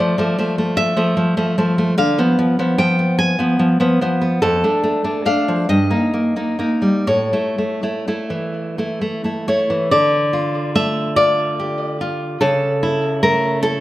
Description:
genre	romantic piece for solo classical guitar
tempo	40-52 BPM (dotted quarters)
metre	6/8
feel	rubato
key	D minor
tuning	A4 = 440 Hz
part	nylon-string guitar	solo	0.0-13.8 s	F2 to Ab5	-15 LUFS	equal	none
room	moderate recital hall reverb, RT60 1.8 s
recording	none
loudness	-15 LUFS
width	side -16 dB against mid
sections	0.0-9.9 A section; 9.9-13.8 B section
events	none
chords	0.0 Dm; 2.0 Ddim7 (rootless); 4.4 Dm/F; 5.7 Eb/G; 7.1 A; 9.9 Dm; 12.4 A/C#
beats	0.77 | 1.98 3.19 | 4.42 5.70 | 7.09 8.56 | 9.92 11.18 | 12.41 13.61

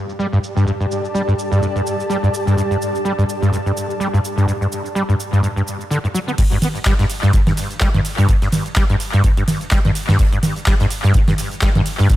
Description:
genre	acid house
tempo	126 BPM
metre	4/4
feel	swing 56% on 16ths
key	unclear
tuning	A4 = 442 Hz
part	granular cloud pad	texture	0.0-6.4 s	G4 to A5	-24 LUFS	equal	built-in reverb, sidechain pumping
part	electro analog drum machine	drums	0.1-12.2 s	congas, crash cymbal, handclaps, hi-hat, ride cymbal, shaker	-23 LUFS	right 1 dB	low-pass filter on hats, low-pass filter on perc, low-pass filter on cymbals, low-pass filter on snare, analog delay
part	overdriven acid bass	riff	0.2-12.1 s	G2 to B3	-18 LUFS	equal	ensemble chorus, cassette tape, analog delay
part	electronic kick drum	drums	6.4-12.2 s	none	-17 LUFS	equal	none
part	gated 80s drum kit	drums	6.4-12.2 s	hi-hat, snare drum	-33 LUFS	right 1 dB	sidechain pumping on hats, high-pass filter on hats, high-pass filter on snare, high-pass filter on room, analog delay
room	light reverb, digital ambience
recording	echo-heavy mix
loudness	-15 LUFS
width	side -14 dB against mid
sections	0.0-6.4 A section; 6.4-12.2 B section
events	drop 6.4-12.2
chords	0.0 Gsus2; 6.4 N.C.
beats	0.19 | 0.67 1.14 1.62 2.10 | 2.57 3.05 3.52 4.00 | 4.48 4.95 5.43 5.91 | 6.38 6.86 7.33 7.81 | 8.29 8.76 9.24 9.71 | 10.19 10.67 11.14 11.62 | 12.10

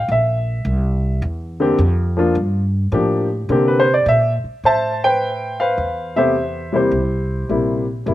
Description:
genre	jazz piano trio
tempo	105 BPM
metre	4/4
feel	swing 67% on 8ths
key	unclear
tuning	A4 = 441 Hz
part	warm baby grand piano	melody	0.0-8.1 s	C3 to A5	-17 LUFS	left 1 dB	slapback echo
part	upright bass	bass	0.0-8.1 s	G1 to C3	-21 LUFS	equal	none
room	little or no reverb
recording	recorded outdoors, with no room sound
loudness	-16 LUFS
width	side -14 dB against mid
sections	0.0-4.6 A section; 4.6-8.1 B section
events	grand piano solo 0.0-4.6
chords	0.1 Bbsus2; 2.4 Gm7; 3.5 Csus2; 4.6 Am9; 6.9 C7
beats	| 0.09 0.66 1.23 1.79 | 2.36 2.93 3.50 4.07 | 4.64 5.21 5.78 6.35 | 6.92 7.50 8.07

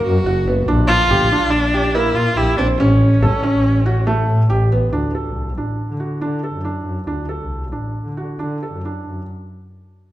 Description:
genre	contemporary instrumental, chamber music in an uneven meter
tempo	140 BPM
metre	5/4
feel	straight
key	D mixolydian from 4.9 s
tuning	A4 = 441 Hz
part	rich viola	melody	0.0-4.5 s	C#4 to F#4	-19 LUFS	equal	none
part	felt-muted upright piano	arpeggios	0.0-9.2 s	A3 to A4	-21 LUFS	right 2 dB	none
part	dark double bass	bass	0.1-9.3 s	F#1 to D3	-19 LUFS	equal	none
room	moderate recital hall reverb, RT60 1.5 s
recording	none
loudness	-15 LUFS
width	side -14 dB against mid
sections	0.0-4.9 A section; 4.9-9.3 B section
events	slowing down 5.8-9.3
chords	0.0 F#; 0.7 Bb6; 2.8 A7; 4.9 D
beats	0.26 | 0.68 1.10 1.52 1.95 2.37 | 2.79 3.21 3.64 4.07 4.51 | 4.94 5.37 5.80 6.22 6.65 | 7.08 7.51 7.95 8.40 8.85

